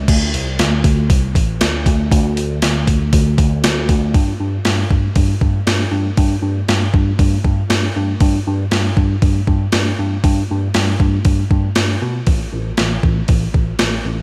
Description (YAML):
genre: rock, shoegaze and dream pop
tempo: 118 BPM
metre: 4/4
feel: straight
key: unclear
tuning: A4 = 441 Hz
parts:
  - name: tine electric piano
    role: bass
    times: 0.0-14.2 s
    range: A1 to B2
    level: -20 LUFS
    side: equal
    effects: phaser
  - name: gated 80s digital drum machine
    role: drums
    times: 0.1-13.9 s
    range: crash cymbal, hi-hat, kick drum, snare drum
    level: -18 LUFS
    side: equal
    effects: gated reverb, gated reverb snare
room: light reverb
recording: none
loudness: -16 LUFS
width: mono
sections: 0.0-4.1 A section; 4.1-14.2 B section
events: none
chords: none